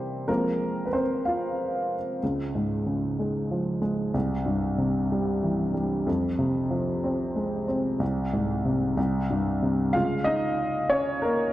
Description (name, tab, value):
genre	pop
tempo	62 BPM (dotted quarters)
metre	6/8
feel	straight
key	unclear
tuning	A4 = 442 Hz
part	dark upright piano	solo	0.0-11.5 s	C2 to F5	-24 LUFS	equal	slapback echo
room	moderate scoring stage reverb, RT60 1.8 s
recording	none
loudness	-24 LUFS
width	side -14 dB against mid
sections	0.0-2.2 A section; 2.2-9.9 B section; 9.9-11.5 C section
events	upright piano solo 0.0-2.2, 9.9-11.5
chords	0.3 Fm; 2.2 Db; 4.1 C; 6.1 Fm; 8.0 Ab/C; 9.0 C5; 9.9 Db